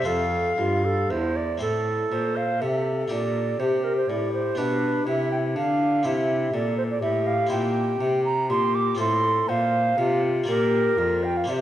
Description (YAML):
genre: classical, baroque-style sonata movement with continuo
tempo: 121 BPM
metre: 3/4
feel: straight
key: F major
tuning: A4 = 439 Hz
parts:
  - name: tenor recorder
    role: melody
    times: 0.0-11.6 s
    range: D4 to F5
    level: -27 LUFS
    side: left 5 dB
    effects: none
  - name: bright baroque flute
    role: second line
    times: 0.0-11.6 s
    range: F4 to D6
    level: -25 LUFS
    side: right 3 dB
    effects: none
  - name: harpsichord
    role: accompaniment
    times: 0.0-11.6 s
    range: E2 to D5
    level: -29 LUFS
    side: equal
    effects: none
  - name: rich cello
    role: bass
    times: 0.0-11.6 s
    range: E2 to D3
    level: -28 LUFS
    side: right 1 dB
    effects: none
room: wet recital hall reverb, RT60 1.4 s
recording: none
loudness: -21 LUFS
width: side -12 dB against mid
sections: 0.0-1.6 A section; 1.6-11.6 A section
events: none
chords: 0.1 F; 1.6 Am; 3.1 Gm/Bb; 4.6 G7/B; 6.1 C; 7.5 C7/Bb; 9.0 F/A; 10.5 Bb